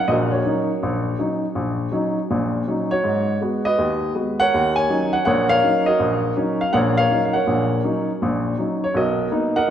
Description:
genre	solo jazz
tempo	162 BPM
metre	4/4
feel	swing 64% on 8ths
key	Eb minor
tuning	A4 = 440 Hz
part	warm upright piano	solo	0.0-9.7 s	Bb1 to Ab5	-18 LUFS	equal	none
room	wet scoring stage reverb, RT60 1.5 s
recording	recorded in a church or concert hall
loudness	-18 LUFS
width	side -9 dB against mid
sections	0.0-9.7 A section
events	none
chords	0.0 Ebm7; 3.0 Abm7; 4.5 Ebm7; 8.9 Bmaj7

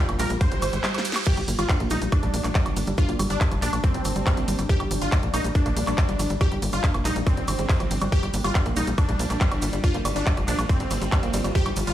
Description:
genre	psychedelic trance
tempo	140 BPM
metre	4/4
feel	straight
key	G minor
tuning	A4 = 440 Hz
part	overtone-sweeping drone	sustained chords	0.0-11.9 s	G3 to F4	-35 LUFS	left 1 dB	chorus, built-in reverb, sidechain pumping
part	woody wave-folded pluck	riff	0.0-11.9 s	F3 to Ab4	-32 LUFS	right 1 dB	chorus, auto-pan, sidechain pumping, digital delay
part	tight sequencer bass	bass	0.1-11.9 s	F1 to Bb1	-27 LUFS	equal	none
part	big-room dance drum kit	drums	0.1-11.9 s	crash cymbal, handclaps, hi-hat, ride cymbal, snare drum, woodblock	-30 LUFS	right 1 dB	studio reverb
part	supersaw stab	melody	0.2-11.9 s	C4 to C5	-30 LUFS	right 1 dB	phaser, sidechain pumping, dub echo
part	cabasa	percussion	0.2-11.9 s	none	-38 LUFS	right 4 dB	none
part	electronic kick drum	drums	0.4-11.6 s	none	-22 LUFS	equal	studio reverb
part	reverse cymbal and zap	sound effects	0.6-1.3, 11.3-11.4 s	none	-34 LUFS	right 4 dB	none
room	light reverb, digital ambience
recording	played on a big sound system in a bare room, stone room reverb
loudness	-21 LUFS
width	side -12 dB against mid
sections	0.0-11.9 A section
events	reverse cymbal 0.6-1.3; drum fill 0.8-1.3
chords	0.0 G5

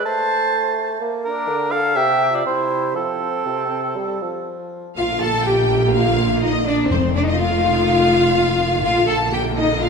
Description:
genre	quick classical-period movement for symphony orchestra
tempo	124 BPM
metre	4/4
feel	straight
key	F major, Bb major from 5.0 s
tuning	A4 = 440 Hz
part	silver concert flute	second line	0.0-4.5 s	C4 to C5	-25 LUFS	left 2 dB	none
part	warm cor anglais	second line	0.0-4.4 s	A4 to A5	-20 LUFS	right 3 dB	none
part	mellow bassoon	accompaniment	0.0-5.0 s	C3 to Bb3	-26 LUFS	right 1 dB	none
part	rich chamber violin section	melody	5.0-9.9 s	C5 to A5	-26 LUFS	left 3 dB	none
part	rich chamber violin section	second line	5.0-9.9 s	C5 to A5	-24 LUFS	left 1 dB	none
part	clear studio viola section	accompaniment	5.0-9.9 s	D3 to Bb3	-25 LUFS	equal	none
part	warm French horn section	sustained chords	5.0-9.9 s	C4 to A4	-22 LUFS	left 4 dB	none
part	dark chamber cello section	bass	5.0-9.9 s	C4 to A4	-20 LUFS	equal	none
part	warm studio double bass section	bass	5.0-9.9 s	F1 to Bb1	-23 LUFS	right 3 dB	none
part	timpani	percussion	6.9-7.6 s	F2	-25 LUFS	left 4 dB	none
room	wet scoring stage reverb, RT60 1.6 s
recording	minimal, uncompressed stereo recording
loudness	-16 LUFS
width	side -5 dB against mid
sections	0.0-5.0 A section; 5.0-9.9 B section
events	none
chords	0.1 N.C.; 1.0 Bb; 2.0 N.C.; 3.0 F; 5.0 Bb; 6.9 F7; 8.8 Bb

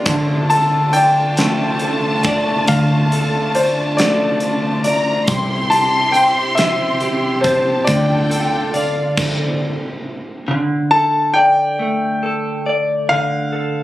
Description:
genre	six-eight pop ballad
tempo	46 BPM (dotted quarters)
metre	6/8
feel	straight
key	D minor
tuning	A4 = 440 Hz
part	direct-recorded clean electric guitar	accompaniment	0.0-13.8 s	C3 to D5	-20 LUFS	equal	double-tracked left and right
part	clear studio string section	sustained chords	0.0-9.2 s	C3 to A4	-25 LUFS	equal	none
part	vintage muted fingered electric bass	bass	0.0-9.1 s	C2 to D2	-20 LUFS	equal	none
part	warm studio violin section	second line	0.1-9.1 s	F5 to C6	-22 LUFS	equal	none
part	huge arena drum kit	drums	0.1-9.4 s	crash cymbal, hi-hat, kick drum, snare drum	-23 LUFS	equal	none
part	warm grand piano	melody	0.5-13.8 s	C5 to A5	-17 LUFS	left 1 dB	none
room	light reverb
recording	recorded on a phone in the room, club reverb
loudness	-14 LUFS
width	side -15 dB against mid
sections	0.0-10.5 A section; 10.5-13.8 A section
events	stop 9.2-10.5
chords	0.1 Dm; 5.3 C; 7.9 Dm

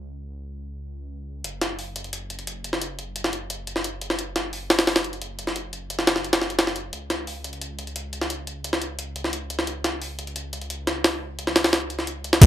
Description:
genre	dark technical drum and bass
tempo	175 BPM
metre	4/4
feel	straight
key	unclear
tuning	A4 = 440 Hz
part	wide detuned saw bass	bass	0.0-12.5 s	F#1 to C#2	-37 LUFS	equal	chorus, tube saturation, sidechain pumping
part	jungle sampler-style drum kit	drums	1.4-12.5 s	hi-hat, snare drum	-31 LUFS	equal	none
part	drum and bass drum kit	drums	12.4-12.5 s	crash cymbal, hi-hat, tambourine	-15 LUFS	left 2 dB	overdrive, low-pass filter on hats, low-pass filter on cymbals, low-pass filter on perc, low-pass filter on room
part	electronic kick drum	drums	12.4-12.5 s	none	-3 LUFS	equal	overdrive
room	little or no reverb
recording	none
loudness	-24 LUFS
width	side -13 dB against mid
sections	0.0-12.4 A section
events	none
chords	none

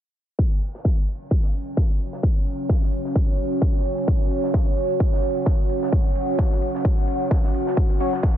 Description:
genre	bass house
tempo	130 BPM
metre	4/4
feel	swing 55% on 16ths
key	unclear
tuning	A4 = 440 Hz
part	electronic kick drum	drums	0.4-8.3 s	none	-20 LUFS	equal	overdrive, studio reverb
part	modern studio drum kit	drums	0.4-8.4 s	ride cymbal, snare drum	-40 LUFS	equal	sidechain pumping on cymbals, high-pass filter on cymbals, studio reverb, soft clipping on snare, high-pass filter on snare, high-pass filter on room
part	deep dark ambient pad	texture	1.6-8.4 s	C#4 to F#5	-25 LUFS	right 1 dB	chorus, built-in reverb, sidechain pumping
part	band-passed chord stab	stabs	8.0-8.1 s	F#3 to C#5	-24 LUFS	left 2 dB	phaser, sidechain pumping
part	electronic hi-hat	drums	8.0-8.1 s	none	-48 LUFS	left 2 dB	studio reverb
room	light reverb, small room reverb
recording	dense, heavily limited modern master, low-pass filter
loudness	-19 LUFS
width	side -11 dB against mid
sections	0.4-8.4 A section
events	filter sweep 0.4-8.4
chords	0.4 F#5

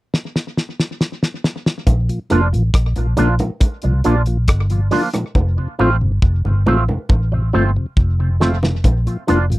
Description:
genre	roots reggae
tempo	69 BPM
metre	4/4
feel	straight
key	Bb major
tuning	A4 = 440 Hz
part	cloth-damped thuddy drum kit	drums	0.1-9.6 s	hi-hat, kick drum, rim click, snare drum	-17 LUFS	equal	none
part	vintage muted fingered electric bass	bass	1.9-9.6 s	F1 to C2	-16 LUFS	equal	none
part	bongos	percussion	1.9-9.5 s	none	-24 LUFS	right 2 dB	none
part	mellow tonewheel organ	accompaniment	2.1-9.6 s	F2 to F4	-20 LUFS	left 1 dB	slow rotary speaker
part	electric guitar with an envelope filter	accompaniment	2.3-9.4 s	F3 to F4	-21 LUFS	right 3 dB	tube saturation, analog chorus, tape echo
room	little or no reverb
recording	dry, close 1970s-style studio recording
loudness	-15 LUFS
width	side -18 dB against mid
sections	0.0-1.9 A section; 1.9-8.8 B section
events	drum fill 0.1-1.9, 5.4-8.8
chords	0.0 N.C.; 1.9 Bb; 5.4 F; 8.8 Bb

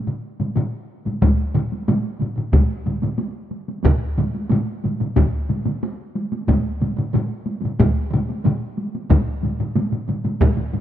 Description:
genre	japanese traditional, taiko drum ensemble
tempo	91 BPM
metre	4/4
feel	straight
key	none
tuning	none
part	solo taiko drums	percussion	0.1-10.8 s	none	-23 LUFS	left 2 dB	none
part	taiko ensemble	percussion	0.1-10.8 s	none	-28 LUFS	right 5 dB	none
part	taiko ensemble	percussion	0.4-10.8 s	none	-24 LUFS	right 1 dB	none
part	taiko ensemble	percussion	1.2-10.6 s	none	-19 LUFS	equal	none
room	little or no reverb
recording	rough home demo mix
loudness	-19 LUFS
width	side -11 dB against mid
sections	0.0-1.2 A section; 1.2-10.8 B section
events	none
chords	none

